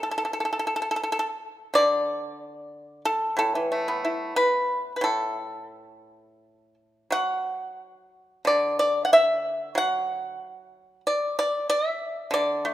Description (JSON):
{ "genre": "chinese traditional, Chinese solo plucked strings", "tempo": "84-96 BPM", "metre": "4/4", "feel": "rubato", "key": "D gong mode", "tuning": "A4 = 440 Hz", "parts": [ { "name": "pipa", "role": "solo", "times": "0.0-12.7 s", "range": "A2 to F#5", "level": "-22 LUFS", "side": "equal", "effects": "none" } ], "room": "moderate recital hall reverb, RT60 1.8 s", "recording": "minimal, uncompressed stereo recording", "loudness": "-23 LUFS", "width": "side -13 dB against mid", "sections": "0.0-12.7 A section", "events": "none", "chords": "none", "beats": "0.46 1.11 | 1.76 2.40 3.06 3.71 | 4.37 5.03 5.71 6.42 | 7.12 7.80 8.46 9.12 | 9.77 10.40 11.04 11.69 | 12.33" }